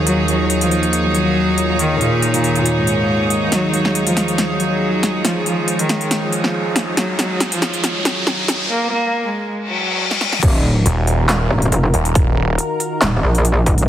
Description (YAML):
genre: heavy wobble dubstep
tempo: 139 BPM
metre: 4/4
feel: swing 53% on 16ths, half-time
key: Eb minor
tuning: A4 = 442 Hz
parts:
  - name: lush unison pad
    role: sustained chords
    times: 0.0-13.9 s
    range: Eb2 to Bb4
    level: -23 LUFS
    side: equal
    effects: chorus, sidechain pumping
  - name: bright chamber string section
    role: texture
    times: 0.0-8.7 s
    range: Eb4 to Db5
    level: -22 LUFS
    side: right 1 dB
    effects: sidechain pumping
  - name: dark cello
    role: melody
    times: 0.1-10.3 s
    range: Ab2 to Bb3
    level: -20 LUFS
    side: equal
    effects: tape echo
  - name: big-room dance drum kit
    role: drums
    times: 0.1-13.9 s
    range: crash cymbal, handclaps, hi-hat, snare drum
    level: -20 LUFS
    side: equal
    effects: overdrive
  - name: riser and reverse cymbal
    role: sound effects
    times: 5.5-10.4 s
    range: none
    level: -24 LUFS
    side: left 2 dB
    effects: none
  - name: metallic wobble bass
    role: bass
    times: 10.4-13.9 s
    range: Eb1 to Bb1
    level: -15 LUFS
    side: equal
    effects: chorus, overdrive
  - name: electronic kick drum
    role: drums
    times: 10.4-13.8 s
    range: none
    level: -14 LUFS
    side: equal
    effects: overdrive
  - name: snarling distorted saw bass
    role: bass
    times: 10.9-12.6 s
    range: Eb1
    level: -16 LUFS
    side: equal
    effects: distortion, overdrive
room: moderate lush hall reverb, RT60 2.3 s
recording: heavily compressed radio sound, multiband compression, high-pass filter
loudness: -15 LUFS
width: side -11 dB against mid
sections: 0.0-10.4 A section; 10.4-13.9 B section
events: build-up 0.0-10.4; filter sweep 0.0-10.4; drum fill 3.5-8.7, 10.1-10.4; riser 5.5-8.7; reverse cymbal 9.7-10.4; drop 10.4-13.9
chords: 0.0 Ebmadd9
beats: | 0.07 0.50 0.93 1.36 | 1.79 2.22 2.66 3.09 | 3.52 3.95 4.38 4.81 | 5.25 5.68 6.11 6.54 | 6.97 7.40 7.84 8.27 | 8.70 9.13 9.56 9.99 | 10.43 10.86 11.29 11.72 | 12.15 12.58 13.02 13.45 | 13.88